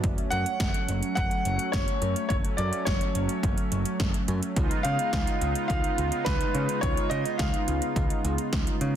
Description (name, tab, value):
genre	synth-pop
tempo	106 BPM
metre	4/4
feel	straight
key	unclear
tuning	A4 = 441 Hz
part	chorused pulse-width pad	sustained chords	0.0-9.0 s	C#3 to E#4	-31 LUFS	right 1 dB	none
part	modern bright picked electric bass	bass	0.0-8.9 s	F#1 to C#3	-30 LUFS	equal	none
part	80s electronic pad drums	drums	0.0-8.9 s	hi-hat, kick drum, snare drum	-28 LUFS	equal	overdrive
part	clear grand piano	melody	0.3-8.5 s	B4 to F#5	-31 LUFS	left 1 dB	ping-pong delay
room	light reverb, digital ambience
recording	dense, heavily limited modern master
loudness	-24 LUFS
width	side -10 dB against mid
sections	0.0-9.0 A section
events	none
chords	0.0 F#m; 4.6 C#7